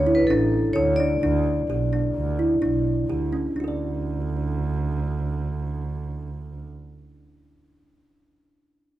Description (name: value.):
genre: contemporary instrumental, contemporary.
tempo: 128 BPM.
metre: 5/4.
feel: straight.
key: D major.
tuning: A4 = 442 Hz.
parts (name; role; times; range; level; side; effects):
vibraphone with hard mallets; melody; 0.0-3.0 s; A4 to D5; -25 LUFS; left 2 dB; none.
rich double bass; bass; 0.0-6.7 s; A1 to D2; -26 LUFS; right 3 dB; none.
kalimba; arpeggios; 0.1-7.4 s; C#4 to D5; -24 LUFS; equal; none.
room: light reverb.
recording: dark, warm production.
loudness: -22 LUFS.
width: side -14 dB against mid.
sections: 0.0-3.6 A section; 3.6-5.9 B section.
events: none.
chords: 0.0 Dmaj7(no3); 1.2 Em7 (rootless); 3.6 D.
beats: 0.29 0.75 | 1.21 1.68 2.15 2.61 3.08 | 3.56 4.03 4.50 4.96 5.44.